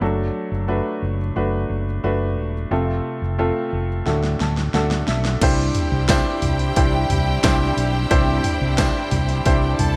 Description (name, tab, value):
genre	piano-driven pop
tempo	89 BPM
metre	4/4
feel	straight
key	unclear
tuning	A4 = 442 Hz
part	clear grand piano	accompaniment	0.0-10.0 s	G2 to A5	-25 LUFS	equal	none
part	fingered electric bass	bass	0.0-10.0 s	E1 to D2	-24 LUFS	equal	none
part	pop drum kit	drums	4.1-9.9 s	crash cymbal, hi-hat, kick drum, snare drum, toms	-24 LUFS	equal	gated reverb
part	rich studio violin section	second line	5.4-10.0 s	G4 to A5	-30 LUFS	equal	none
part	warm studio string section	sustained chords	5.4-10.0 s	G3 to E4	-32 LUFS	equal	none
part	tambourine	percussion	6.1-8.9 s	none	-39 LUFS	equal	none
room	light reverb, small room reverb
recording	bright 1980s-style digital production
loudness	-20 LUFS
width	mono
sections	0.0-5.4 A section; 5.4-10.0 B section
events	grand piano fill 4.1-5.4; drum fill 4.1-5.4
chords	0.0 D/F#; 2.7 F; 4.1 D; 5.4 Cadd9